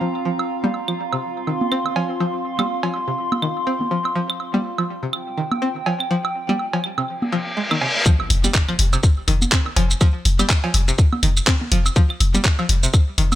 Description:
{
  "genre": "minimal techno",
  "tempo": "123 BPM",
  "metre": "4/4",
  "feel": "swing 58% on 16ths",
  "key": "unclear",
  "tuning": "A4 = 440 Hz",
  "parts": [
    { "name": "string-like resonator pluck", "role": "riff", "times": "0.0-13.2 s", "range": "C3 to C4", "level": "-25 LUFS", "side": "left 1 dB", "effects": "chorus, sidechain pumping, tape echo" },
    { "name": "warbly tape-like pad", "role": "texture", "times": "0.0-8.1 s", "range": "C4 to C6", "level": "-25 LUFS", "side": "right 1 dB", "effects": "chorus, built-in reverb, sidechain pumping" },
    { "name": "woodblock, congas, claves and cowbell", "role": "percussion", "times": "0.4-13.4 s", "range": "none", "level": "-25 LUFS", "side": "right 3 dB", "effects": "tape echo" },
    { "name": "reverse cymbal and impact", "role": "sound effects", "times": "7.3-10.0 s", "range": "none", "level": "-24 LUFS", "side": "left 1 dB", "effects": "none" },
    { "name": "electronic kick drum", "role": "drums", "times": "8.1-13.0 s", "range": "none", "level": "-16 LUFS", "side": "equal", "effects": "none" },
    { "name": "garage drum kit", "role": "drums", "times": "8.1-13.4 s", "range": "handclaps, hi-hat, shaker", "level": "-21 LUFS", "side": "equal", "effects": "low-pass filter on perc, low-pass filter on hats, low-pass filter on snare" },
    { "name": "punchy sub bass", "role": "bass", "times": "8.3-13.4 s", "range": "F1", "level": "-18 LUFS", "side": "equal", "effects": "sidechain pumping" }
  ],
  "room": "light reverb, digital ambience",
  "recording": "none",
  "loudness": "-17 LUFS",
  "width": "side -13 dB against mid",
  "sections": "0.0-8.1 A section; 8.1-13.4 B section",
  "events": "filter sweep on synth pluck 0.0-8.1; reverse cymbal 7.3-8.1; drop 8.1-13.4; impact 8.1-10.0",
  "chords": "0.0 F5"
}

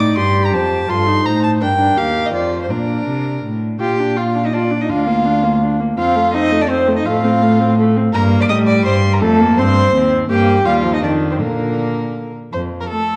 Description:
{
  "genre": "quick classical-period movement for string quartet",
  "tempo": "166 BPM",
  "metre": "3/4",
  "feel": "straight",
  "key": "Bb major",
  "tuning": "A4 = 440 Hz",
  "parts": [
    { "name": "dark violin", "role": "melody", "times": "0.0-13.0 s", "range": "A4 to Eb6", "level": "-24 LUFS", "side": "equal", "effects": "none" },
    { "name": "dark violin", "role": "second line", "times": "0.0-13.2 s", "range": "Bb3 to D6", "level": "-22 LUFS", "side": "equal", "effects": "none" },
    { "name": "dark viola", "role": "accompaniment", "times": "0.0-13.2 s", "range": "D3 to G4", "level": "-21 LUFS", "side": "equal", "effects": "none" },
    { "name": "rich cello", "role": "bass", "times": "0.0-12.8 s", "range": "D2 to C3", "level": "-20 LUFS", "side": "equal", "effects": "none" }
  ],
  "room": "wet recital hall reverb, RT60 1.7 s",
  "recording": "dark, warm production",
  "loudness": "-16 LUFS",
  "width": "mono",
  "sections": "0.0-3.8 A section; 3.8-12.5 B section",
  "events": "none",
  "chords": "0.0 Eb; 0.5 F; 1.6 Gm; 2.0 Eb; 2.3 F5; 2.7 Bb; 4.9 Bb/D; 6.0 F; 7.1 F/A; 8.1 C7sus2/G; 9.2 F; 10.3 Gm; 10.7 Eb; 11.0 Dm7/F; 11.4 Bb; 12.5 F"
}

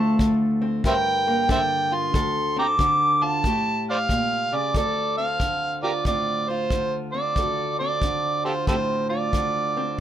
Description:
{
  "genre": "acoustic country blues, solo or duo",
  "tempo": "92 BPM",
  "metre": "4/4",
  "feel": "swing 64% on 8ths",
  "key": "D minor",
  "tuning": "A4 = 441 Hz",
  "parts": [
    { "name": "overdriven harmonica", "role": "melody", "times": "0.0-10.0 s", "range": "G4 to D6", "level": "-23 LUFS", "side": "right 1 dB", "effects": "none" },
    { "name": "fingerpicked steel-string acoustic guitar", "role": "accompaniment", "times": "0.0-10.0 s", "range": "D2 to Bb4", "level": "-26 LUFS", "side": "left 1 dB", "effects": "none" },
    { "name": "kick drum", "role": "drums", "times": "0.2-9.5 s", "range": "none", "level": "-26 LUFS", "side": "equal", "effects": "none" }
  ],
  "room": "moderate studio reverb, RT60 0.6 s",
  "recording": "minimal, uncompressed stereo recording",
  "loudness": "-20 LUFS",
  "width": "side -11 dB against mid",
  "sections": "0.0-4.8 A section; 4.8-10.0 B section",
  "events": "harmonica solo 0.0-4.8",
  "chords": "0.0 Dm7; 0.8 Gm7; 2.1 Dm7; 3.4 A7b9; 4.8 Dm7"
}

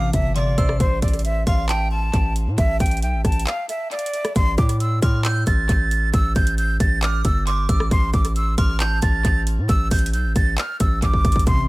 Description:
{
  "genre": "hip hop, trap",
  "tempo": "135 BPM",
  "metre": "4/4",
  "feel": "half-time",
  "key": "A minor",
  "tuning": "A4 = 440 Hz",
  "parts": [
    { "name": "breathy silver concert flute", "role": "melody", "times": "0.0-11.7 s", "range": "C5 to A6", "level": "-25 LUFS", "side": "right 1 dB", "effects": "tape echo" },
    { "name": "delicate synth tine bell", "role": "second line", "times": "0.0-9.7 s", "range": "A5 to E6", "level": "-33 LUFS", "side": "right 5 dB", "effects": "chorus, phaser, tape echo" },
    { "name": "mellow electric guitar", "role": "accompaniment", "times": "0.0-0.8, 11.5-11.7 s", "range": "C3 to C5", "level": "-26 LUFS", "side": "left 1 dB", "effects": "warbly pitch drift, tape echo" },
    { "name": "hard-hitting 808-style bass", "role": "bass", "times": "0.0-11.7 s", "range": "G1 to A2", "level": "-21 LUFS", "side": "equal", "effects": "none" },
    { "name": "trap drum kit", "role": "drums", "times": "0.1-11.6 s", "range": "handclaps, hi-hat, kick drum, rim click", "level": "-21 LUFS", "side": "equal", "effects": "none" }
  ],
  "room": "little or no reverb",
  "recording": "echo-heavy mix",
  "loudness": "-17 LUFS",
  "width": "side -20 dB against mid",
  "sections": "0.0-4.4 A section; 4.4-11.7 B section",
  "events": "break 3.5-4.4; drum fill 11.0-11.5",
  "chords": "0.0 Am; 0.8 N.C.; 4.4 A5; 7.9 N.C."
}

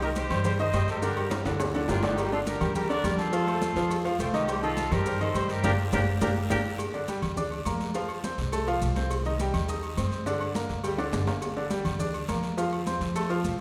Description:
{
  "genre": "latin, salsa",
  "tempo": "208 BPM",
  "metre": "4/4",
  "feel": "straight",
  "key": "G minor",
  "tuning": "A4 = 439 Hz",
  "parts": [
    { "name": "clear horn section", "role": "melody", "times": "0.0-6.6 s", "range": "C4 to Eb5", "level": "-34 LUFS", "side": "equal", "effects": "none" },
    { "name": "bright grand piano", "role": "accompaniment", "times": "0.0-13.5 s", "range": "D3 to Eb6", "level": "-32 LUFS", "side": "equal", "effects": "none" },
    { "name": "upright bass", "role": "bass", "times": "0.0-13.6 s", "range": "G1 to G2", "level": "-34 LUFS", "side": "equal", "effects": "none" },
    { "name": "congas", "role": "percussion", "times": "0.0-13.6 s", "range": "none", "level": "-37 LUFS", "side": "equal", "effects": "none" },
    { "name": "maracas", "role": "percussion", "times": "0.0-13.6 s", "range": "none", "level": "-48 LUFS", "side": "equal", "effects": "none" },
    { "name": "agogo bells and timbales", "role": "percussion", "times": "0.2-13.4 s", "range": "none", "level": "-41 LUFS", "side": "equal", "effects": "none" },
    { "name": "cowbell and bongos", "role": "percussion", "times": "0.2-13.6 s", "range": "none", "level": "-40 LUFS", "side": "equal", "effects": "none" },
    { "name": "guiro", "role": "percussion", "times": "0.2-13.6 s", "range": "none", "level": "-48 LUFS", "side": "equal", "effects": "none" }
  ],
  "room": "wet scoring stage reverb, RT60 1.9 s",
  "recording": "recorded in a church or concert hall",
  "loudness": "-28 LUFS",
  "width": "mono",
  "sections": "0.0-6.8 A section; 6.8-13.6 B section",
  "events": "drum fill 1.3-2.2, 5.6-6.8, 11.0-11.4; band accent 5.6-6.8",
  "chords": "0.0 Cm; 1.0 Gm; 3.3 F; 4.5 Cm; 5.6 Gm; 7.9 F; 9.1 Cm; 10.3 Gm; 12.6 F"
}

